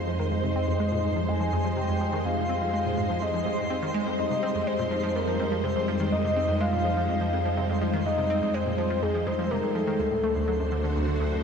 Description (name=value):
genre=ambient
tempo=124 BPM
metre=4/4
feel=straight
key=F minor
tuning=A4 = 440 Hz
part: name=soft octave-layered synth lead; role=melody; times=0.0-11.4 s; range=Ab4 to Ab5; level=-29 LUFS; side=left 2 dB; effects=chorus, tremolo, analog delay
part: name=string machine, full ensemble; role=sustained chords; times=0.0-11.4 s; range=G3 to C5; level=-29 LUFS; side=equal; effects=ensemble chorus
part: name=analog pluck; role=riff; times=0.0-11.4 s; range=D2 to C4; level=-32 LUFS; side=right 1 dB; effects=chorus, cassette tape, analog delay
part: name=warm sub bass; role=bass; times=0.0-11.4 s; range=D2 to F2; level=-31 LUFS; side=equal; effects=none
part: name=twinkling granular texture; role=texture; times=0.0-11.4 s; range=C5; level=-37 LUFS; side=right 1 dB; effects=built-in reverb
room=wet huge ambient reverb, RT60 7.7 s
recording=none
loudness=-24 LUFS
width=side -6 dB against mid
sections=0.0-11.4 A section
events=filter sweep on synth arpeggio sound 0.0-11.4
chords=0.0 Fm7; 10.0 D7